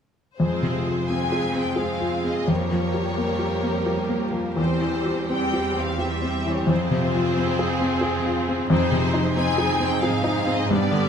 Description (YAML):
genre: classical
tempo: 81-92 BPM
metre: 3/4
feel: rubato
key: F minor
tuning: A4 = 440 Hz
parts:
  - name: warm grand piano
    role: melody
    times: 0.4-11.1 s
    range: E2 to Ab4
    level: -23 LUFS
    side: left 1 dB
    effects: none
  - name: warm symphonic violin section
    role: melody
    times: 0.4-11.1 s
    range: C5 to Ab5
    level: -30 LUFS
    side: left 3 dB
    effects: none
  - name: warm symphonic violin section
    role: second line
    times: 0.4-11.1 s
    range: D4 to Bb4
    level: -30 LUFS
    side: left 1 dB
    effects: none
  - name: warm studio viola section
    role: accompaniment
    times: 0.4-11.1 s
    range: G3 to C4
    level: -29 LUFS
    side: right 3 dB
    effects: none
  - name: rich symphonic cello section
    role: bass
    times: 0.4-11.1 s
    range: E2 to Ab2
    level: -31 LUFS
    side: right 5 dB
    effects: none
room: moderate concert hall reverb, RT60 2.1 s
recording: none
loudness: -20 LUFS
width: side -7 dB against mid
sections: 0.4-11.1 A section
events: none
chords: 0.4 Fm; 2.5 Gm7b5/F; 4.6 C/E; 6.7 Fm; 8.7 Fm7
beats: | 0.41 1.12 1.80 | 2.50 3.19 3.88 | 4.58 5.31 6.01 | 6.70 7.38 8.05 | 8.71 9.37 10.03 | 10.70